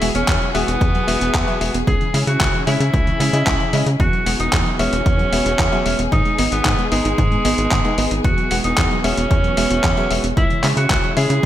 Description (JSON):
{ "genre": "italo disco", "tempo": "113 BPM", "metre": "4/4", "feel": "straight", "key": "E major", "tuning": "A4 = 441 Hz", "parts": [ { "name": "bright alto saxophone", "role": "melody", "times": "0.0-11.5 s", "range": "G#3 to G#4", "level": "-22 LUFS", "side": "right 1 dB", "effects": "ping-pong delay" }, { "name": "warm studio string section", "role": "sustained chords", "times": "0.0-11.5 s", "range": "E3 to G#4", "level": "-26 LUFS", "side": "left 2 dB", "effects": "none" }, { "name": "soft round pluck", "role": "arpeggios", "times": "0.0-11.5 s", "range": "C#3 to D#4", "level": "-25 LUFS", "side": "right 5 dB", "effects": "chorus, cassette tape, ping-pong delay" }, { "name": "bright electric grand piano", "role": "stabs", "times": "0.0-11.3 s", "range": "B3 to F#5", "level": "-26 LUFS", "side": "left 3 dB", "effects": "none" }, { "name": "tight sequencer bass", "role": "bass", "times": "0.0-11.5 s", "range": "E1 to C#3", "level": "-21 LUFS", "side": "equal", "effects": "tube saturation" }, { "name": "dusty soul sampler-style drum kit", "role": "drums", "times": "0.0-11.5 s", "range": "handclaps, hi-hat", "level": "-23 LUFS", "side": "left 1 dB", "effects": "overdrive, gated reverb" }, { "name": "electronic kick drum", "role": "drums", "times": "0.3-11.5 s", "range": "none", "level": "-20 LUFS", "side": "equal", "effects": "none" } ], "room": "light reverb, digital ambience", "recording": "none", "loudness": "-15 LUFS", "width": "side -12 dB against mid", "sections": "0.0-11.5 A section", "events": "none", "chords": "0.0 Eadd9; 1.9 C#m; 4.0 Eadd9; 6.1 G#m; 8.2 Eadd9; 10.4 C#m" }